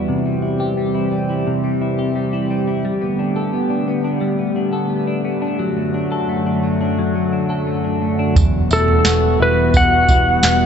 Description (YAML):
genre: dream pop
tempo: 87 BPM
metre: 4/4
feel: straight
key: E minor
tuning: A4 = 438 Hz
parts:
  - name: warbly tape-like pad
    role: sustained chords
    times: 0.0-10.7 s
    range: F#2 to G4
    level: -20 LUFS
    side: right 1 dB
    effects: chorus, built-in reverb
  - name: clean electric guitar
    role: arpeggios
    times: 0.0-10.7 s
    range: E2 to A4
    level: -21 LUFS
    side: left 3 dB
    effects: analog chorus, digital delay
  - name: vintage muted picked electric bass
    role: bass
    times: 8.4-10.7 s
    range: E1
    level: -19 LUFS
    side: right 1 dB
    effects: none
  - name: soft vintage rhythm box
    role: drums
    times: 8.4-10.6 s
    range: kick drum, snare drum, tambourine, toms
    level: -16 LUFS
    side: right 1 dB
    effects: none
  - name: clean lap steel guitar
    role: melody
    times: 8.7-10.7 s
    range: A4 to F#5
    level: -15 LUFS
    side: equal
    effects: digital delay
room: moderate plate reverb, RT60 2.2 s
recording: nothing above 7.9 kHz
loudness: -15 LUFS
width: side -7 dB against mid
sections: 0.0-8.4 A section; 8.4-10.7 B section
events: none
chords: 0.1 C; 2.8 Gadd9; 5.6 D/F#; 8.4 Emadd9